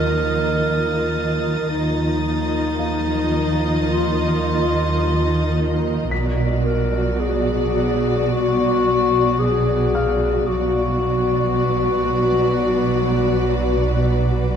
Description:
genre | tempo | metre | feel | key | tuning
cinematic, suspense film score | 55 BPM | 4/4 | straight | unclear | A4 = 439 Hz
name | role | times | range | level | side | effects
warm studio violin section | melody | 0.0-14.6 s | D5 to Eb5 | -30 LUFS | left 2 dB | none
mellow clarinet | second line | 0.0-14.6 s | Eb4 to Bb4 | -22 LUFS | left 3 dB | none
warm studio viola section | accompaniment | 0.0-14.6 s | F3 to F#4 | -26 LUFS | right 1 dB | none
ethereal airy pad | sustained chords | 0.0-14.6 s | B3 to Eb5 | -26 LUFS | equal | ensemble chorus, built-in reverb
dark studio double bass section | bass | 0.0-14.6 s | B1 to Eb2 | -24 LUFS | right 2 dB | none
warm studio cello section | bass | 0.0-14.6 s | B2 to Eb3 | -24 LUFS | right 2 dB | none
dark grand piano | texture | 0.0-14.6 s | F5 to B6 | -35 LUFS | left 4 dB | none
warm studio violin section | texture | 0.0-5.5 s | Eb6 to A6 | -32 LUFS | left 1 dB | none
room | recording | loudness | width
moderate scoring stage reverb, RT60 1.7 s | none | -17 LUFS | side -8 dB against mid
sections
0.0-14.6 A section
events
none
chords
0.0 Ebsus2; 6.1 Bm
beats
0.58 | 1.69 2.80 3.91 5.01 | 6.11 7.21 8.31 9.41 | 10.49 11.58 12.67 13.76

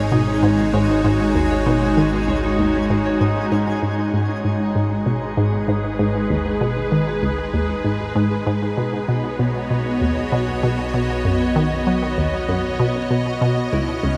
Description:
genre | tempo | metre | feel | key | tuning
ambient, sequencer-driven space music | 97 BPM | 4/4 | straight | unclear | A4 = 440 Hz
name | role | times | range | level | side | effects
evolving wavetable pad | sustained chords | 0.0-14.2 s | G#3 to D#5 | -25 LUFS | equal | ensemble chorus, built-in reverb
concert harp | arpeggios | 0.0-6.4, 13.7-14.2 s | G#3 to C#5 | -26 LUFS | equal | tape echo
resonant blip pluck | riff | 0.0-14.2 s | C#2 to F#3 | -23 LUFS | equal | chorus, tape echo
fat analog bass | bass | 0.0-14.2 s | G#1 to C#2 | -32 LUFS | equal | none
twinkling granular texture | texture | 0.0-3.8 s | G#4 to G#5 | -36 LUFS | equal | built-in reverb
room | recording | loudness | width
wet shimmer reverb, RT60 6.8 s | dark, warm production | -20 LUFS | mono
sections
0.0-3.8 A section; 3.8-14.2 B section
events
fade-in on analog synth bass 3.8-14.2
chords
0.0 G#7sus4; 8.8 B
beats
0.12 0.73 | 1.35 1.97 2.59 3.21 | 3.83 4.45 5.07 5.68 | 6.30 6.92 7.54 8.16 | 8.78 9.39 10.01 10.63 | 11.25 11.87 12.49 13.11 | 13.72

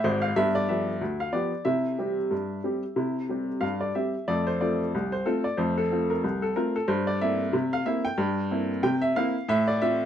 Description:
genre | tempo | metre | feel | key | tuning
ragtime piano | 92 BPM | 2/4 | swing 58% on 16ths | F major | A4 = 440 Hz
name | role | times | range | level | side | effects
clear upright piano | solo | 0.0-10.1 s | Ab1 to G5 | -24 LUFS | equal | none
room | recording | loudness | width
moderate studio reverb, RT60 0.7 s | dark, warm production | -24 LUFS | side -9 dB against mid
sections
0.0-10.1 A section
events
none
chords
0.4 G7; 1.7 C; 4.3 F; 6.9 C7/G; 9.5 F/A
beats
| 0.36 1.01 | 1.66 2.32 | 2.97 3.63 | 4.28 4.93 | 5.58 6.24 | 6.89 7.54 | 8.19 8.84 | 9.49

